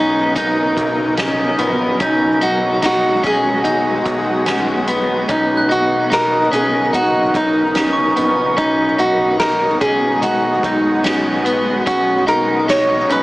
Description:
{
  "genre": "dream pop",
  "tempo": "73 BPM",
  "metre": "4/4",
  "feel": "straight",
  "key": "G# minor",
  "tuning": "A4 = 442 Hz",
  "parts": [
    { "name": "nylon-string guitar", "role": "melody", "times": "0.0-13.2 s", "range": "D#4 to C#5", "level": "-17 LUFS", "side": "equal", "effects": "digital delay" },
    { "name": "shimmering ambient pad", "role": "sustained chords", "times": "0.0-13.2 s", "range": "C#3 to A#4", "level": "-22 LUFS", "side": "equal", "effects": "chorus, built-in reverb" },
    { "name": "clean electric guitar", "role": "arpeggios", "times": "0.0-13.2 s", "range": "B3 to D#4", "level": "-19 LUFS", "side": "left 1 dB", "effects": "wide subtle chorus, digital delay" },
    { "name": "fat analog bass", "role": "bass", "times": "0.0-13.2 s", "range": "A#1 to B1", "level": "-27 LUFS", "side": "equal", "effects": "none" },
    { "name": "soft-mallet drum kit", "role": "drums", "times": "0.4-13.2 s", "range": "hi-hat, kick drum, snare drum", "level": "-27 LUFS", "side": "equal", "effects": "none" },
    { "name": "glockenspiel with hard plastic mallets", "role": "texture", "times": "5.6-8.9 s", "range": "C#6 to F#6", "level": "-24 LUFS", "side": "right 2 dB", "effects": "digital delay" }
  ],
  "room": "wet shimmer reverb, RT60 4.6 s",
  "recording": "heavily compressed radio sound, small speaker sound",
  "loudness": "-13 LUFS",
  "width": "side -19 dB against mid",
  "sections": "0.0-13.2 A section",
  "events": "none",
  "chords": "0.0 Bmaj9; 2.0 G#m7/B; 5.3 Bmaj9; 8.6 G#m7/B; 11.9 Bmaj9",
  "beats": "0.36 1.18 | 2.01 2.83 3.65 4.47 | 5.29 6.12 6.94 7.76 | 8.58 9.40 10.22 11.05 | 11.87 12.69"
}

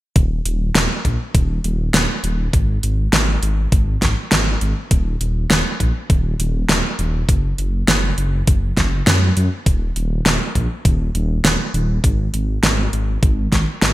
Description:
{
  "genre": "synthwave",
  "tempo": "101 BPM",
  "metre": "4/4",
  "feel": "straight",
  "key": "Eb minor",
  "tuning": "A4 = 440 Hz",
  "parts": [
    { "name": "dark detuned saw bass", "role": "bass", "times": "0.2-13.9 s", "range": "Eb1 to Gb2", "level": "-19 LUFS", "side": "equal", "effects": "none" },
    { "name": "electronic kick drum", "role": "drums", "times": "0.2-13.6 s", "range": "none", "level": "-16 LUFS", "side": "equal", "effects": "small room ambience" },
    { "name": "pop drum kit", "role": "drums", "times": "0.2-13.9 s", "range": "hi-hat, snare drum", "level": "-18 LUFS", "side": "equal", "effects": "small room ambience, gated reverb" }
  ],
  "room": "little or no reverb",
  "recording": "bright 1980s-style digital production",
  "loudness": "-16 LUFS",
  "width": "side -16 dB against mid",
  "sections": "0.2-13.9 A section",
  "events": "none",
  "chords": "none",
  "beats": "| 0.16 0.75 1.35 1.94 | 2.53 3.13 3.72 4.32 | 4.91 5.50 6.10 6.69 | 7.29 7.88 8.47 9.07 | 9.66 10.26 10.85 11.45 | 12.04 12.63 13.23 13.82"
}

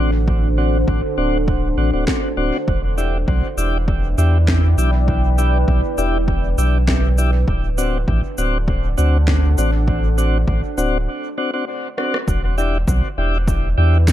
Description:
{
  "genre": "ambient dub",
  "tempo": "100 BPM",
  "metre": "4/4",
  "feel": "swing 54% on 16ths",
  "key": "E minor",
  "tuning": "A4 = 440 Hz",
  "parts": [
    { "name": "deep dark ambient pad", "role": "sustained chords", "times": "0.0-14.1 s", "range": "D4 to G5", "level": "-25 LUFS", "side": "right 1 dB", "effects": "chorus, built-in reverb" },
    { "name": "tonewheel organ", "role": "stabs", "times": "0.0-14.0 s", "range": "C4 to G4", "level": "-24 LUFS", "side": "left 2 dB", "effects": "slow rotary speaker, low-pass filter, dub echo" },
    { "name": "warm sub bass", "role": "bass", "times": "0.0-14.1 s", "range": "D1 to E2", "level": "-17 LUFS", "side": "equal", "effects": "none" },
    { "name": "electronic kick drum", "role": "drums", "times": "0.3-14.1 s", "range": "none", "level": "-22 LUFS", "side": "equal", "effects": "overdrive" },
    { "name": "electronic snare drum, shaker and rim click", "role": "drums", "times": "2.1-14.1 s", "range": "none", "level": "-26 LUFS", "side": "equal", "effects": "overdrive, dub echo" }
  ],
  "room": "digital ambience",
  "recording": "dark, warm production",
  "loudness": "-16 LUFS",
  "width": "side -12 dB against mid",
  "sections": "0.0-12.3 A section; 12.3-14.1 B section",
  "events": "break 11.1-12.3; drum fill 12.0-12.3",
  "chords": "0.0 D7; 2.7 Em7; 7.5 D7; 12.3 Em7",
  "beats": "| 0.28 0.88 1.48 2.08 | 2.68 3.28 3.88 4.48 | 5.08 5.68 6.28 6.88 | 7.48 8.08 8.68 9.28 | 9.88 10.48 11.08 11.68 | 12.28 12.88 13.48 14.08"
}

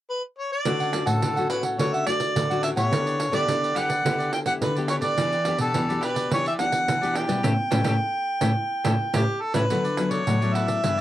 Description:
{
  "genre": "samba and choro",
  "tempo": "106 BPM",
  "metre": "4/4",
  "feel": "straight",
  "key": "D major",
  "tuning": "A4 = 443 Hz",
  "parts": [
    { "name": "mellow harmonica", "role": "melody", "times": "0.1-11.0 s", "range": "G4 to G5", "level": "-25 LUFS", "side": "equal", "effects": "none" },
    { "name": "cavaquinho", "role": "accompaniment", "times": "0.7-11.0 s", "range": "D4 to F#5", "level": "-31 LUFS", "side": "right 2 dB", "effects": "none" },
    { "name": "nylon-string guitar", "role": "accompaniment", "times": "0.7-11.0 s", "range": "G2 to G4", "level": "-30 LUFS", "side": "left 4 dB", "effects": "none" },
    { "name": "nylon-string guitar", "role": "bass", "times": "0.7-11.0 s", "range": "G2 to E3", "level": "-28 LUFS", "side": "equal", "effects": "none" },
    { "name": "pandeiro", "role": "percussion", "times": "0.7-11.0 s", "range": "none", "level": "-29 LUFS", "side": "right 4 dB", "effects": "none" }
  ],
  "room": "light reverb",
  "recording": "none",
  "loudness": "-21 LUFS",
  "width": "side -13 dB against mid",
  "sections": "0.7-9.7 A section; 9.7-11.0 B section",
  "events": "band accent 7.4-9.7",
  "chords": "0.0 N.C.; 0.7 Dmaj7; 2.9 G6/D; 5.2 Em7; 7.4 A7; 9.7 D69",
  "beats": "0.09 | 0.66 1.22 1.79 2.35 | 2.92 3.48 4.05 4.62 | 5.18 5.75 6.31 6.88 | 7.44 8.01 8.57 9.14 | 9.70 10.27 10.83"
}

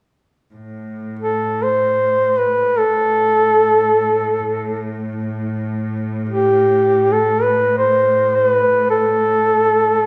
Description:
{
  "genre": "caucasian folk, Caucasian lament",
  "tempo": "free time",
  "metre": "none",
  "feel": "none",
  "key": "A minor",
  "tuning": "A4 = 438 Hz",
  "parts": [
    { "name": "clear chamber cello section", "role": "drone", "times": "0.5-10.1 s", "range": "A2", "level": "-28 LUFS", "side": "equal", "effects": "none" },
    { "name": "mellow duduk", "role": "melody", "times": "1.2-10.1 s", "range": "G4 to C5", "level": "-16 LUFS", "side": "equal", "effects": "none" }
  ],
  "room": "wet recital hall reverb, RT60 1.5 s",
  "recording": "recorded in a church or concert hall",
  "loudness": "-16 LUFS",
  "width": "mono",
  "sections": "0.5-10.1 A section",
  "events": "none",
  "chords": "none",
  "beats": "free time"
}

